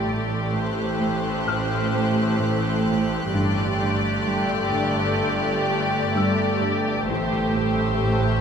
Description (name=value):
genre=cinematic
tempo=64 BPM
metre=4/4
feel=straight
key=A minor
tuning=A4 = 440 Hz
part: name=dark studio violin section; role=melody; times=0.0-8.4 s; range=C5 to D5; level=-29 LUFS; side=left 2 dB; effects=none
part: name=warm studio violin section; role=second line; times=0.0-8.4 s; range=G4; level=-28 LUFS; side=right 2 dB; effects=none
part: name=dark studio viola section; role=accompaniment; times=0.0-8.4 s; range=A3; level=-28 LUFS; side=left 2 dB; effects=none
part: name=dark studio cello section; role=bass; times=0.0-8.4 s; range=G2 to A2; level=-29 LUFS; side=right 2 dB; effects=none
part: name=dark studio double bass section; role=bass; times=0.0-8.4 s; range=G1 to A1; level=-29 LUFS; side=right 3 dB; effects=none
part: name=bowed-like drone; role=drone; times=0.0-8.4 s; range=G1 to A1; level=-30 LUFS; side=left 2 dB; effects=built-in reverb
part: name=clear studio violin section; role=texture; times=0.0-8.4 s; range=C6 to G6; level=-36 LUFS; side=left 5 dB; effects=none
part: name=dark concert grand piano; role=texture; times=0.0-8.4 s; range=G5 to F6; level=-34 LUFS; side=left 5 dB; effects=none
part: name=warm studio cello section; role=riff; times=0.1-8.3 s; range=G2 to A3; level=-29 LUFS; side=right 1 dB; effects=none
room=moderate scoring stage reverb, RT60 1.7 s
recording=minimal, uncompressed stereo recording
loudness=-20 LUFS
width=side -7 dB against mid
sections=0.0-8.4 A section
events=none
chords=0.0 Am7; 3.3 Gsus2; 7.1 Am7